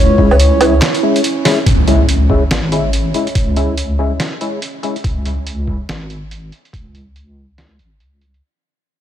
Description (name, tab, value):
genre	deep dubstep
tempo	142 BPM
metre	4/4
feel	swing 60% on 16ths, half-time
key	C# minor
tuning	A4 = 440 Hz
part	breathy flute-like synth lead	melody	0.0-1.2 s	C#5	-19 LUFS	equal	wide subtle chorus, dub echo
part	dark analog pad	sustained chords	0.0-8.5 s	C#4 to C#5	-22 LUFS	right 4 dB	chorus, phaser
part	deep soft wobble bass	bass	0.0-8.4 s	G#1 to C#2	-15 LUFS	equal	chorus, tube saturation
part	percussive organ stab	stabs	0.2-5.0 s	G#3 to E4	-19 LUFS	left 3 dB	analog chorus, cassette tape, dub echo
part	electronic kick drum	drums	0.2-6.8 s	none	-16 LUFS	equal	none
part	trip hop sampler-style drum kit	drums	0.3-8.4 s	handclaps, hi-hat, snare drum, woodblock	-19 LUFS	right 2 dB	low-pass filter on hats, low-pass filter on perc, low-pass filter on snare
part	impact	sound effects	1.7-3.4 s	none	-20 LUFS	equal	none
room	light reverb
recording	none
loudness	-12 LUFS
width	side -10 dB against mid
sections	0.0-1.7 A section; 1.7-8.4 B section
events	drop 0.0-1.7; drum fill 1.4; fade-out 1.7-8.4; impact 1.7-3.4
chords	0.0 C#m